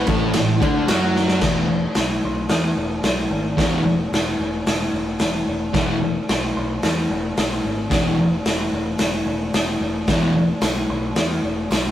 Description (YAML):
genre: garage rock duo or trio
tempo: 111 BPM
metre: 4/4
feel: straight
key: E mixolydian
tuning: A4 = 440 Hz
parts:
  - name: thick fuzz guitar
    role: riff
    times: 0.0-10.3 s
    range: E2 to F#4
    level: -19 LUFS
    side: equal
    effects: distortion
  - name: growling picked electric bass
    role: bass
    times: 0.0-11.9 s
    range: E1 to F#2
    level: -27 LUFS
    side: equal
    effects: overdrive
  - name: raw garage drum kit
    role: drums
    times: 0.1-11.8 s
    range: crash cymbal, hi-hat, kick drum, ride cymbal, snare drum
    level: -20 LUFS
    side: equal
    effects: none
  - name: tambourine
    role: percussion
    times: 0.9-1.0, 10.6-11.8 s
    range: none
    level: -38 LUFS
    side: right 3 dB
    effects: none
room: light reverb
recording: rough rehearsal-room recording, warm saturation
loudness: -18 LUFS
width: side -12 dB against mid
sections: 0.0-1.4 A section; 1.4-11.9 B section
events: drum fill 1.1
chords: 0.0 Bm7/A (rootless); 1.4 E5